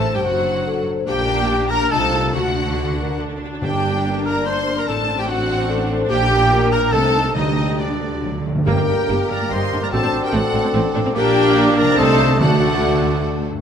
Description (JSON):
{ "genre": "classical", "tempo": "143 BPM", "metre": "3/4", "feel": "straight", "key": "G minor", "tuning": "A4 = 440 Hz", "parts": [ { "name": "rich symphonic violin section", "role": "melody", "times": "0.0-13.2 s", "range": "D5 to C6", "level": "-26 LUFS", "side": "left 4 dB", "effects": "none" }, { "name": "dark clarinet", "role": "second line", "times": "0.0-13.2 s", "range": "D4 to C5", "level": "-26 LUFS", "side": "left 2 dB", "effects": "none" }, { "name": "hollow flute section", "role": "second line", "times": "0.0-13.2 s", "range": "A4 to C6", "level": "-27 LUFS", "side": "right 2 dB", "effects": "none" }, { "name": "mellow cor anglais", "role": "second line", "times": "0.0-13.5 s", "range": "D4 to Eb5", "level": "-27 LUFS", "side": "right 3 dB", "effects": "none" }, { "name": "rich symphonic violin section", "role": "second line", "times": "0.0-13.5 s", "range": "D4 to C5", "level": "-29 LUFS", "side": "left 2 dB", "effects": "none" }, { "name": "rich symphonic viola section", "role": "accompaniment", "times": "0.0-13.5 s", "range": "D3 to Eb4", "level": "-25 LUFS", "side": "right 1 dB", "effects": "none" }, { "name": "mellow French horn section", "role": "sustained chords", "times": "0.0-13.4 s", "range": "D4 to C5", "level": "-24 LUFS", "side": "left 4 dB", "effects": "none" }, { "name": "concert harp", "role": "arpeggios", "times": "0.0-13.6 s", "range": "G2 to D6", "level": "-27 LUFS", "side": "left 7 dB", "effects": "none" }, { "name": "rich symphonic double bass section", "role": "bass", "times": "0.0-13.5 s", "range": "F#1 to D2", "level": "-25 LUFS", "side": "right 3 dB", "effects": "none" }, { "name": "warm symphonic cello section", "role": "bass", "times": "0.0-13.5 s", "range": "D2 to D3", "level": "-27 LUFS", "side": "right 3 dB", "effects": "none" }, { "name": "timpani", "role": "percussion", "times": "3.6-4.2, 7.4-9.3, 12.4-13.0 s", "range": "G2 to D3", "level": "-24 LUFS", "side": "right 3 dB", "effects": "none" }, { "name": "warm bassoon", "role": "accompaniment", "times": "8.7-13.5 s", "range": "A3 to C4", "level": "-26 LUFS", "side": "right 3 dB", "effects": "none" } ], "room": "moderate scoring stage reverb, RT60 1.9 s", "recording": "none", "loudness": "-16 LUFS", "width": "side -8 dB against mid", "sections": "0.0-8.7 A section; 8.7-13.6 B section", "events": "timpani fill 8.2-8.7", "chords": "0.0 D7; 1.1 Gm/Bb; 1.9 Adim/C; 2.3 D; 3.6 Gm; 4.9 D7/A; 6.1 Gm/Bb; 6.9 Adim/C; 7.4 Dsus4; 8.2 D; 8.7 Gm; 9.9 D7/A; 11.2 Gm/Bb; 12.0 Adim/C; 12.4 D", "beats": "0.24 0.66 | 1.07 1.49 1.91 | 2.34 2.77 3.20 | 3.62 4.05 4.47 | 4.88 5.29 5.69 | 6.10 6.51 6.93 | 7.36 7.79 8.23 | 8.67 9.10 9.51 | 9.93 10.34 10.74 | 11.16 11.56 11.98 | 12.41 12.83 13.26" }